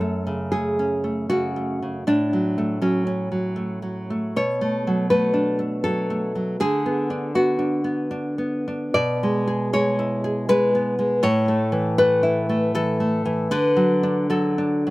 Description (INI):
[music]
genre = romantic piece for solo classical guitar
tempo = 79 BPM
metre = 3/4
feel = uneven beats, rubato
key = A major from 8.9 s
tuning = A4 = 440 Hz
[part]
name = nylon-string guitar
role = solo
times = 0.0-14.9 s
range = F#2 to D5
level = -20 LUFS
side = equal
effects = slapback echo
[sound]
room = little or no reverb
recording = recorded outdoors, with no room sound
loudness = -20 LUFS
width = side -19 dB against mid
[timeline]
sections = 0.0-14.9 A section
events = none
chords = 0.0 F#m; 2.1 F#m/A; 4.4 Bm7; 6.6 Bm/D; 8.9 E7/B; 11.2 A; 13.5 D